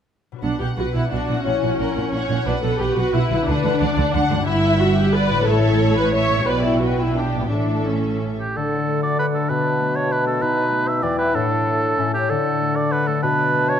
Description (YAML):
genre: classical, dramatic, fast romantic movement for symphony orchestra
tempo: 168-197 BPM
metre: 3/4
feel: straight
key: B minor, D major from 4.5 s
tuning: A4 = 441 Hz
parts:
  - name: concert harp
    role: arpeggios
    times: 0.3-13.8 s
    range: E2 to E5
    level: -25 LUFS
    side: left 8 dB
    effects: none
  - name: rich symphonic violin section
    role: melody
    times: 0.4-8.4 s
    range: E5 to G5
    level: -33 LUFS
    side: equal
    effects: none
  - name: warm symphonic viola section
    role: accompaniment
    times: 0.4-8.2 s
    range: B3 to C#5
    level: -22 LUFS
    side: equal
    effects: none
  - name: rich symphonic cello section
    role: bass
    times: 0.4-8.4 s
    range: G2 to D3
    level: -25 LUFS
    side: right 3 dB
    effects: none
  - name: warm studio double bass section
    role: bass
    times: 0.4-8.4 s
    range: G1 to D2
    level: -24 LUFS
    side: right 3 dB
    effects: none
  - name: warm symphonic violin section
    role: second line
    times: 0.8-8.4 s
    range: F#4 to F#5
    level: -26 LUFS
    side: left 2 dB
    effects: none
  - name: warm oboe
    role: second line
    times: 8.4-13.8 s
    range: G4 to E5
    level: -21 LUFS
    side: right 2 dB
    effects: none
  - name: mellow concert flute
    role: second line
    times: 8.6-13.8 s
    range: E5 to A5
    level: -30 LUFS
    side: left 5 dB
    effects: none
  - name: warm clarinet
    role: second line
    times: 8.6-13.8 s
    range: C#4 to E4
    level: -28 LUFS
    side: left 1 dB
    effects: none
  - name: warm bassoon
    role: accompaniment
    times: 8.6-13.8 s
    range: A2 to E3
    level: -24 LUFS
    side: right 2 dB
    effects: none
room: moderate concert hall reverb, RT60 2.1 s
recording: close, detailed microphones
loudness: -17 LUFS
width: side -8 dB against mid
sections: 0.4-8.6 A section; 8.6-13.8 B section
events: none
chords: 0.4 Bm; 1.5 F#7/A#; 2.5 Bm; 3.5 Bm/D; 4.5 Gmaj7; 5.5 A; 6.5 G/B; 7.5 A; 8.6 D; 9.5 Bm7; 10.4 B7; 11.0 Em7; 11.3 D/A; 12.0 A; 12.3 D; 13.2 Bm7